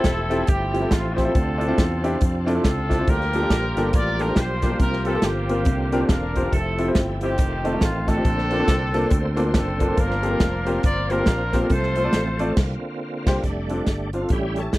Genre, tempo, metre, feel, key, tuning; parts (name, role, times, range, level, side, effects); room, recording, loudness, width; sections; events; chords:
uptempo gospel; 139 BPM; 4/4; swing 61% on 8ths; F major; A4 = 440 Hz
clear horn section; melody; 0.0-12.6 s; Bb3 to D5; -26 LUFS; equal
clear concert grand piano; accompaniment; 0.0-14.8 s; G2 to D5; -25 LUFS; left 1 dB
bright tonewheel organ; sustained chords; 0.0-14.8 s; C3 to C5; -29 LUFS; right 1 dB; fast rotary speaker, overdrive, chorus vibrato
fingered electric bass; bass; 0.0-14.8 s; E1 to F2; -26 LUFS; equal
natural country drum kit; drums; 0.0-14.8 s; crash cymbal, hi-hat, kick drum, snare drum; -21 LUFS; equal
light reverb; dry, close 1970s-style studio recording; -19 LUFS; side -18 dB against mid
0.0-13.4 A section; 13.4-14.8 B section
band accent 12.6-13.4; tonewheel organ solo 13.4-14.8
0.0 Fmaj9; 1.3 Dm9; 3.1 Gm9; 4.8 C7sus4; 5.7 C9sus4; 6.5 Fmaj9; 7.4 F7; 8.3 Bbmaj9; 10.0 Gm11; 11.7 F/C; 12.6 C9sus4; 13.4 F6